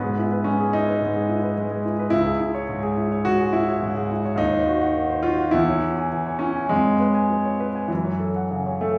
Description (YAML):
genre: classical, romantic character piece for solo piano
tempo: 89-109 BPM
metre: 4/4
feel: rubato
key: C# minor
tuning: A4 = 440 Hz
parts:
  - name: clear grand piano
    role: solo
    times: 0.0-9.0 s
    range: C#2 to G#5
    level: -22 LUFS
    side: equal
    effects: none
room: wet recital hall reverb, RT60 1.4 s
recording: heard from further back in the room, studio reverb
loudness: -22 LUFS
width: mono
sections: 0.0-9.0 A section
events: none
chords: 0.0 E/G#; 2.1 C#m; 4.4 Cdim/Eb; 5.5 C#m/E; 6.7 C#7/E#; 7.9 F#m7